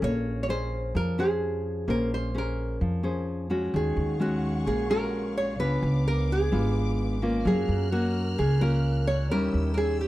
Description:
bossa nova; 129 BPM; 4/4; straight; Bb minor, Eb minor from 3.7 s; A4 = 440 Hz
nylon-string guitar; melody; 0.0-10.1 s; Gb4 to Db5; -30 LUFS; right 1 dB
nylon-string guitar; accompaniment; 0.0-10.1 s; Bb2 to C5; -28 LUFS; left 1 dB
upright bass; bass; 0.0-10.1 s; Ab1 to Gb2; -28 LUFS; equal
warm symphonic string section; sustained chords; 3.7-10.1 s; Ab4 to Gb6; -41 LUFS; left 1 dB
light reverb; dry, close 1970s-style studio recording; -24 LUFS; side -16 dB against mid
0.0-3.7 A section; 3.7-10.1 B section
0.0 Bbm9; 3.7 Ebm11; 5.6 Db7b9; 7.5 Gbmaj7; 9.3 Eb7b9

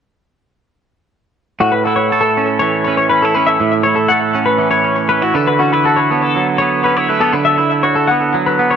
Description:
rock; 120 BPM; 4/4; straight; A major; A4 = 438 Hz
twangy electric guitar; accompaniment; 1.6-8.8 s; A2 to A4; -15 LUFS; right 6 dB; tape echo
twangy electric guitar; arpeggios; 1.6-8.8 s; F#4 to F#5; -14 LUFS; left 4 dB; lush chorus, tape echo
moderate plate reverb, RT60 3.4 s; echo-heavy mix; -12 LUFS; side -8 dB against mid
1.6-8.8 A section
1.6 A69; 5.3 D69

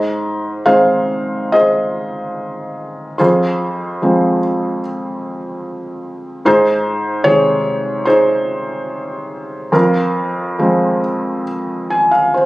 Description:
classical, lyrical solo piano; 68-76 BPM; 4/4; rubato; Ab major; A4 = 445 Hz
felt-muted upright piano; solo; 0.0-12.5 s; F2 to Ab5; -14 LUFS; equal
moderate scoring stage reverb, RT60 1.9 s; recorded on a phone in the room, studio ambience; -13 LUFS; side -18 dB against mid
0.0-12.5 A section
felt piano fill 11.5-12.5
0.0 Ab; 3.2 Fm; 6.5 Ab; 9.7 Fm

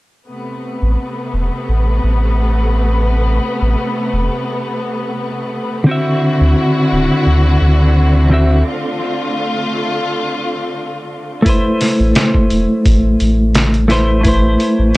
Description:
trip hop; 86 BPM; 4/4; swing 54% on 16ths; A minor; A4 = 442 Hz
rich studio string section; sustained chords; 0.3-11.4 s; C3 to F#4; -19 LUFS; left 1 dB
soft dub sub bass; bass; 0.8-14.9 s; D1 to D2; -13 LUFS; equal; tube saturation
clean electric guitar; accompaniment; 5.8-15.0 s; D3 to E5; -14 LUFS; equal; harmonic tremolo, tape echo
trip hop sampler-style drum kit; drums; 11.5-15.0 s; hi-hat, kick drum, snare drum; -15 LUFS; equal; small room reverb
little or no reverb; dry, gritty hardware recording, cassette tape; -12 LUFS; side -20 dB against mid
0.3-11.5 A section; 11.5-15.0 B section
break 8.7-11.5
0.3 Amadd9; 5.9 D9; 8.7 Dm7; 11.5 Amadd9

